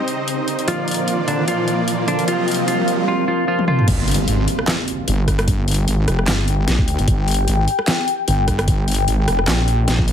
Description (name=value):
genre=heavy wobble dubstep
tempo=150 BPM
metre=4/4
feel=swing 55% on 16ths, half-time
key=unclear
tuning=A4 = 440 Hz
part: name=supersaw chords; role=sustained chords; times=0.0-3.1 s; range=Bb2 to Eb5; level=-24 LUFS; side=right 1 dB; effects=sidechain pumping, low-pass filter
part: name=riser and impact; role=sound effects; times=0.0-5.5 s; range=none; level=-25 LUFS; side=equal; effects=none
part: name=deep dark ambient pad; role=texture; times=0.0-10.1 s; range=Bb4 to C6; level=-24 LUFS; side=left 1 dB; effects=chorus, built-in reverb, sidechain pumping
part: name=dubstep drum kit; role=drums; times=0.1-10.1 s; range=crash cymbal, handclaps, hi-hat, rim click, snare drum, toms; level=-22 LUFS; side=left 1 dB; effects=overdrive, studio reverb
part: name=semi-hollow electric guitar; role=melody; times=0.7-3.9 s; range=D3 to F4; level=-22 LUFS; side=equal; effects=dub echo
part: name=wobble bass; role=bass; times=3.9-10.1 s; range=F1 to D2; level=-18 LUFS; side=equal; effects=chorus, overdrive
part: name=electronic kick drum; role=drums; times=3.9-10.1 s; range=none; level=-19 LUFS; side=equal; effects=overdrive, studio reverb
room=light reverb, digital ambience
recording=heavily compressed radio sound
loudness=-16 LUFS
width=side -8 dB against mid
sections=0.0-3.9 A section; 3.9-10.1 B section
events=build-up 0.0-3.9; riser 0.0-3.1; drum fill 3.6-3.9; drop 3.9-10.1; impact 3.9-5.5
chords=0.0 Eb5; 0.7 Bb; 2.3 Cm; 3.9 N.C.